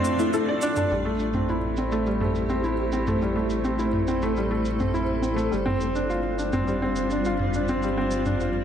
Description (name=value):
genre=piano and strings electronica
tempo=104 BPM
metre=4/4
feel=straight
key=A minor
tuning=A4 = 440 Hz
part: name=granular cloud pad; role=sustained chords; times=0.0-8.6 s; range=G3 to D5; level=-29 LUFS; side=equal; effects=built-in reverb
part: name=felt-muted upright piano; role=riff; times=0.0-8.6 s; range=G3 to D5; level=-25 LUFS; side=equal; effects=tape echo
part: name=electronic shaker and toms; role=drums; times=0.0-8.5 s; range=none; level=-31 LUFS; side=equal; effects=low-pass filter on perc, low-pass filter on toms, low-pass filter on room
part: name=soft round pluck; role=arpeggios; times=0.2-0.8 s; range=E4 to A5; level=-31 LUFS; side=left 5 dB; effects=lush chorus, tape echo
part: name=round analog bass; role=bass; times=0.9-8.6 s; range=G1 to A1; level=-31 LUFS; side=equal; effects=none
room=moderate concert hall reverb, RT60 2.2 s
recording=none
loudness=-22 LUFS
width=side -9 dB against mid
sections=0.9-8.6 A section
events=break 0.0-0.9; filter sweep on drum 0.9-8.6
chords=0.0 Dm7; 0.9 Am7; 5.5 G7sus4